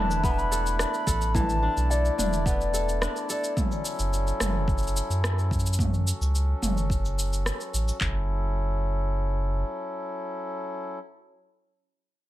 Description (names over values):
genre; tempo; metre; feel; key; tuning
folktronica; 108 BPM; 4/4; straight; F# minor; A4 = 440 Hz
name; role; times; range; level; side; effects
baroque flute; melody; 0.0-3.5 s; D5 to B5; -30 LUFS; left 1 dB; ping-pong delay
hand-pumped harmonium; sustained chords; 0.0-11.0 s; F#3 to D5; -33 LUFS; left 2 dB; stereo widening
kora; arpeggios; 0.0-4.7 s; E3 to A4; -34 LUFS; equal; ping-pong delay
warm sub bass; bass; 0.0-9.6 s; E1 to F#2; -26 LUFS; equal; none
organic electronic drum kit; drums; 0.1-8.0 s; rim click, shaker, toms; -31 LUFS; equal; none
organic electronic drum kit; drums; 0.2-8.1 s; handclaps, kick drum; -27 LUFS; equal; none
room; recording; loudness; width
small room ambience; none; -24 LUFS; side -15 dB against mid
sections
0.0-8.0 A section; 8.0-10.2 B section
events
filter sweep on sub bass 0.0-8.0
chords
0.0 E7sus4; 3.6 F#m7